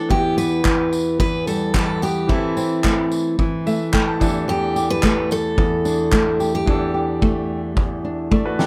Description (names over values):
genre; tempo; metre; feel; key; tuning
acoustic pop; 110 BPM; 4/4; straight; unclear; A4 = 440 Hz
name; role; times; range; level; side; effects
picked steel-string acoustic guitar; melody; 0.0-7.6 s; E4 to B4; -26 LUFS; equal; none
flamenco guitar; accompaniment; 0.0-8.7 s; E2 to G4; -23 LUFS; equal; none
bright concert grand piano; accompaniment; 0.1-8.7 s; E3 to A5; -31 LUFS; equal; none
loose indie drum kit; drums; 0.1-8.7 s; handclaps, kick drum, snare drum, tambourine; -24 LUFS; equal; none
room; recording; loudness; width
light reverb; none; -20 LUFS; mono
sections
0.0-8.7 A section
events
grand piano fill 3.4-4.5; drum fill 6.7-8.7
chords
0.1 Em; 2.3 Am/E; 4.2 Gsus2/E